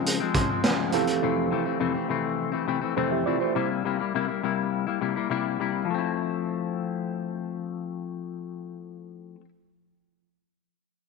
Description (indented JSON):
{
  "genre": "indie pop, bedroom pop",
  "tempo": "103 BPM",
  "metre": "4/4",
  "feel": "straight",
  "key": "F major",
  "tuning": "A4 = 440 Hz",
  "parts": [
    { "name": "reed electric piano", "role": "accompaniment", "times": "0.0-3.7 s", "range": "F3 to C6", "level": "-28 LUFS", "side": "right 15 dB", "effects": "none" },
    { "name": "semi-hollow electric guitar", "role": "accompaniment", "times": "0.0-9.5 s", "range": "F2 to E4", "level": "-27 LUFS", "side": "left 10 dB", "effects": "wide subtle chorus, vibrato effect" },
    { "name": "raw garage drum kit", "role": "drums", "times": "0.1-1.2 s", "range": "hi-hat, kick drum, snare drum", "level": "-26 LUFS", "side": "right 2 dB", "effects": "none" }
  ],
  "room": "moderate plate reverb, RT60 1.7 s, studio reverb",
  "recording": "1960s-style stereo with parts hard left and right",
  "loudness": "-25 LUFS",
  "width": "side -3 dB against mid",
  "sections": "0.0-5.9 A section; 5.9-8.2 B section",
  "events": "reed electric piano fill 0.1-1.2",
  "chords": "0.0 Dbmaj7; 0.9 Fmaj7; 3.5 C7; 5.9 Fmaj7",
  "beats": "0.05 0.63 | 1.22 1.80 2.38 2.96 | 3.55 4.13 4.71 5.30 | 5.88 6.46 7.05 7.63"
}